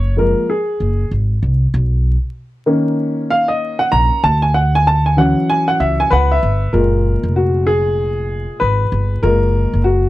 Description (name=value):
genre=hip hop, jazz-hop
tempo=96 BPM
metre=4/4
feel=swing 61% on 16ths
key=F# major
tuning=A4 = 440 Hz
part: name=dark upright piano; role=accompaniment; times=0.0-10.1 s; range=A#2 to A#5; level=-15 LUFS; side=equal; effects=none
part: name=upright bass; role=bass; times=0.0-10.1 s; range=E#1 to D2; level=-15 LUFS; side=equal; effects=none
room=light reverb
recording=dark, warm production, vinyl crackle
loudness=-13 LUFS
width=side -16 dB against mid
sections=0.0-6.7 A section; 6.7-10.1 B section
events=upright piano solo 0.0-6.7, 6.7-10.1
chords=0.0 F#maj9; 1.7 Bmaj9; 4.2 Dmaj9; 6.7 F#maj9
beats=0.48 1.11 | 1.73 2.36 2.98 3.61 | 4.23 4.86 5.48 6.11 | 6.73 7.36 7.98 8.61 | 9.23 9.86